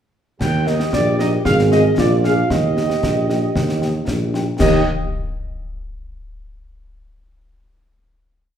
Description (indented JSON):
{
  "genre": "military-style march for wind band",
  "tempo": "114 BPM",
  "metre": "2/4",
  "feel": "straight",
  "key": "Eb major",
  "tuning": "A4 = 440 Hz",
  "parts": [
    { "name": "warm trumpet section", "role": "melody", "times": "0.4-4.8 s", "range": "D5 to G5", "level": "-22 LUFS", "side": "right 3 dB", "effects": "none" },
    { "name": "warm euphonium", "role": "second line", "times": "0.4-4.3 s", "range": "F4 to Ab4", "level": "-22 LUFS", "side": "right 2 dB", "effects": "none" },
    { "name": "warm tuba", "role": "bass", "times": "0.4-4.8 s", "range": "Ab1 to Eb2", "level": "-19 LUFS", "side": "equal", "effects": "none" },
    { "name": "concert snare drum, clash cymbals and concert bass drum", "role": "drums", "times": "0.4-4.9 s", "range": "none", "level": "-23 LUFS", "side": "left 1 dB", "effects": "none" },
    { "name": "dark French horn section", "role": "accompaniment", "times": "0.7-4.8 s", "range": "Bb3 to Bb4", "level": "-25 LUFS", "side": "left 4 dB", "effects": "none" }
  ],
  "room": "wet large studio reverb, RT60 1.2 s",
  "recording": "heard from further back in the room",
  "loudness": "-15 LUFS",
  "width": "side -9 dB against mid",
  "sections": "0.4-4.6 A section; 4.6-5.6 final chord",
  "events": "none",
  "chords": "0.4 Eb; 1.5 Fm/Ab; 2.0 Bb7; 2.5 Eb",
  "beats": "| 0.40 0.93 | 1.45 1.98 | 2.50 3.03 | 3.55 4.08 | 4.60"
}